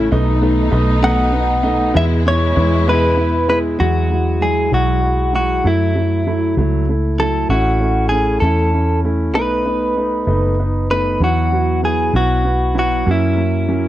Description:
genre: six-eight pop ballad.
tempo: 65 BPM (dotted quarters).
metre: 6/8.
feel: straight.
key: E major.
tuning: A4 = 440 Hz.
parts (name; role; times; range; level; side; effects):
mellow French horn section; second line; 0.0-0.8 s; D#4; -21 LUFS; left 5 dB; none.
warm concert grand piano; accompaniment; 0.0-13.9 s; F#3 to E4; -20 LUFS; right 2 dB; none.
warm studio string section; sustained chords; 0.0-3.8 s; B2 to E4; -24 LUFS; left 2 dB; none.
vintage muted fingered electric bass; bass; 0.0-13.9 s; F#1 to F#2; -18 LUFS; equal; none.
direct-recorded clean electric guitar; melody; 1.0-13.9 s; E4 to F#5; -18 LUFS; equal; none.
room: small room ambience.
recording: dry, close 1970s-style studio recording.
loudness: -14 LUFS.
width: side -14 dB against mid.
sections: 0.0-3.8 A section; 3.8-13.9 B section.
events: none.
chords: 0.1 B7; 2.0 E; 3.8 Eadd9; 5.7 F#m7; 7.5 A; 9.4 B7; 11.2 Esus2; 13.1 F#.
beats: | 0.12 1.04 | 1.96 2.88 | 3.80 4.73 | 5.65 6.58 | 7.50 8.43 | 9.36 10.29 | 11.21 12.14 | 13.07.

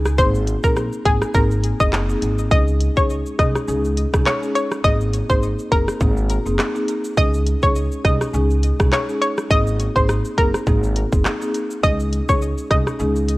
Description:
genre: dancehall.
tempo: 103 BPM.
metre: 4/4.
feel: swing 56% on 16ths.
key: unclear.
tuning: A4 = 440 Hz.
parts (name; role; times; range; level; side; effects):
upright bass; bass; 0.0-13.4 s; Gb1 to Db2; -21 LUFS; equal; none.
island pop drum kit; drums; 0.1-13.4 s; handclaps, hi-hat, kick drum, rim click, shaker; -20 LUFS; equal; none.
analog pluck; melody; 0.2-12.8 s; Ab4 to Eb5; -22 LUFS; equal; chorus, ping-pong delay.
marimba with medium mallets; accompaniment; 0.2-13.2 s; Ab3 to Ab4; -24 LUFS; left 1 dB; none.
room: digital ambience.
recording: worn, warbling old tape, cassette tape, warbly pitch drift.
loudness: -16 LUFS.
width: side -19 dB against mid.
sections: 0.0-2.5 A section; 2.5-13.4 B section.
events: none.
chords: 0.2 Abadd9; 2.5 Dbsus2; 4.8 Abadd9; 7.2 Dbsus2; 9.5 Abadd9; 11.8 Dbsus2.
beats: | 0.18 0.77 1.35 1.93 | 2.51 3.10 3.68 4.26 | 4.84 5.43 6.01 6.59 | 7.17 7.76 8.34 8.92 | 9.50 10.09 10.67 11.25 | 11.83 12.42 13.00.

